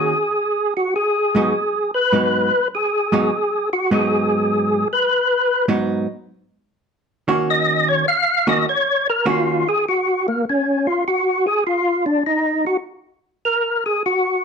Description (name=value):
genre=jazz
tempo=101 BPM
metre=4/4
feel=swing 69% on 8ths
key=Eb minor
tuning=A4 = 440 Hz
part: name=percussive tonewheel organ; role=melody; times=0.0-14.4 s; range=Bb3 to F5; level=-17 LUFS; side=left 1 dB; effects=slow rotary speaker, overdrive, chorus vibrato
part: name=hollow-body jazz guitar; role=accompaniment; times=0.0-9.6 s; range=Ab2 to Gb4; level=-19 LUFS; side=right 2 dB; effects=none
room=moderate studio reverb, RT60 0.8 s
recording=none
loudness=-16 LUFS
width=side -6 dB against mid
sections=0.0-14.4 A section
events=tonewheel organ solo 0.0-14.4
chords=0.0 Ebm7; 1.5 Abm7; 6.3 Ebm7; 11.0 N.C.; 13.4 Ebmadd11 (rootless)